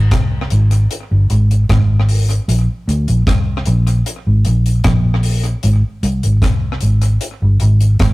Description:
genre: roots reggae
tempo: 76 BPM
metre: 4/4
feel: straight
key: unclear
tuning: A4 = 442 Hz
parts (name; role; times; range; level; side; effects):
- vintage muted fingered electric bass; bass; 0.0-8.1 s; G1 to D2; -12 LUFS; equal; none
- deep reggae drum kit; drums; 0.1-8.1 s; hi-hat, kick drum, rim click; -18 LUFS; equal; tape echo
room: light reverb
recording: rough rehearsal-room recording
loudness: -12 LUFS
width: side -20 dB against mid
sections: 0.0-8.1 A section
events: none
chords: none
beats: 0.11 0.90 1.69 | 2.48 3.27 4.06 4.84 | 5.63 6.42 7.21 8.00

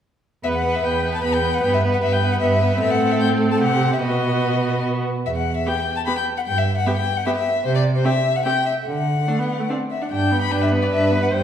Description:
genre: quick classical-period movement for string quartet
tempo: 149 BPM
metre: 3/4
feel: rubato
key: E minor, G major from 7.7 s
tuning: A4 = 440 Hz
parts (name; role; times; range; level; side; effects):
- warm violin; melody; 0.4-11.4 s; C5 to B5; -22 LUFS; left 4 dB; none
- rich violin; second line; 0.4-11.4 s; D4 to C5; -25 LUFS; equal; none
- warm viola; accompaniment; 0.4-11.4 s; G3 to D4; -24 LUFS; right 2 dB; none
- warm cello; bass; 0.4-11.4 s; E2 to D3; -23 LUFS; right 2 dB; none
room: wet recital hall reverb, RT60 1.6 s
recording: recorded in a church or concert hall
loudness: -18 LUFS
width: side -9 dB against mid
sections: 0.4-10.1 A section; 10.1-11.4 B section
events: none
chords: 0.4 E5; 1.6 G6; 2.8 Am; 4.0 B; 5.3 Em; 6.5 G6; 7.7 C5; 8.9 D; 10.1 G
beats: | 0.44 0.84 1.24 | 1.64 2.03 2.42 | 2.81 3.21 3.61 | 4.02 4.44 4.85 | 5.26 5.67 6.07 | 6.47 6.87 7.26 | 7.65 8.05 8.46 | 8.86 9.28 9.70 | 10.11 10.52 10.92 | 11.32

